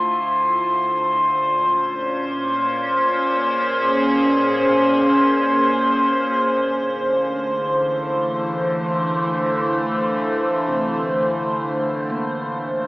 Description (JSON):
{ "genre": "ambient", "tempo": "free time", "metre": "none", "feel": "none", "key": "unclear", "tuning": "A4 = 443 Hz", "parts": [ { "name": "evolving wavetable pad", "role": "sustained chords", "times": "0.0-12.9 s", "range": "A#2 to C#5", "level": "-19 LUFS", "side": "equal", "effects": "chorus, built-in reverb, phaser" }, { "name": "glass harmonica", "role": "texture", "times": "0.0-12.9 s", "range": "F5 to C6", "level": "-22 LUFS", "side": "equal", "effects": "none" }, { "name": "handpan", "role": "arpeggios", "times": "9.3-12.9 s", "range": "C3 to A#3", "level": "-35 LUFS", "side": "equal", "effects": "none" } ], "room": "wet huge ambient reverb, RT60 7.8 s", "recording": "AM radio sound", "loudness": "-17 LUFS", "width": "side -22 dB against mid", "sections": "0.0-6.5 A section; 6.5-12.9 B section", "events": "fade-in on ambient pad 0.0-6.5; fade-in on glass harmonica 6.5-12.9", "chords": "0.0 Dm7; 0.8 A#m7; 6.5 Dm7; 12.1 A#m", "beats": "free time" }